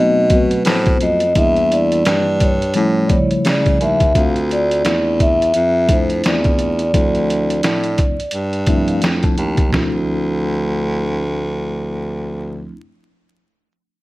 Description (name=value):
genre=hip hop, jazz-hop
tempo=86 BPM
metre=4/4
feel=swing 60% on 16ths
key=D dorian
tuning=A4 = 438 Hz
part: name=vibraphone with soft mallets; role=melody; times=0.0-9.0 s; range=B4 to F5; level=-18 LUFS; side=equal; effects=low-pass filter
part: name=mellow tine electric piano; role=accompaniment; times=0.0-12.8 s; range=C#3 to A5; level=-21 LUFS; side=left 1 dB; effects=medium stereo tremolo, low-pass filter
part: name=clear baritone saxophone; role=bass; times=0.0-12.8 s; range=D2 to C#3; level=-20 LUFS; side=equal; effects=none
part: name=trip hop sampler-style drum kit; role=drums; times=0.3-9.9 s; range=hi-hat, kick drum, snare drum, toms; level=-18 LUFS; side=equal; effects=none
room=light reverb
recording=vinyl crackle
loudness=-14 LUFS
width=side -19 dB against mid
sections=0.0-9.7 A section; 9.7-12.5 B section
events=filter sweep 0.0-9.7; tine electric piano fill 8.3-9.7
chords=0.0 B7b9; 1.4 Em7b5; 2.8 A7b13; 4.1 Dm9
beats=0.66 | 1.36 2.05 2.75 3.45 | 4.15 4.84 5.54 6.24 | 6.94 7.63 8.33 9.03 | 9.73 10.43 11.12 11.82